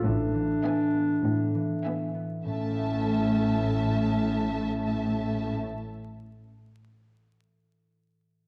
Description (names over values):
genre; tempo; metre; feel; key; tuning
cinematic, playful, whimsical film cue; 100 BPM; 4/4; straight; A major; A4 = 440 Hz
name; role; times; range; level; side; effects
mellow clarinet; second line; 0.0-5.6 s; C#4 to D4; -32 LUFS; equal; none
concert harp; arpeggios; 0.0-6.5 s; A2 to E5; -36 LUFS; equal; none
warm chamber cello section; bass; 0.0-5.6 s; A2; -35 LUFS; equal; none
warm chamber double bass section; bass; 0.0-5.6 s; A1; -35 LUFS; equal; none
rich studio violin section; melody; 0.6-5.6 s; G#5 to A5; -42 LUFS; equal; none
rich symphonic violin section; second line; 0.6-5.6 s; E5; -40 LUFS; equal; none
rich chamber viola section; accompaniment; 0.6-5.6 s; A3 to B3; -34 LUFS; equal; none
room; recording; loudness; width
wet scoring stage reverb, RT60 1.6 s; worn, warbling old tape, cassette tape, vinyl crackle, warbly pitch drift; -27 LUFS; mono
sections
0.0-2.4 A section; 2.4-4.8 B section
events
none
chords
0.0 E7/A; 2.4 A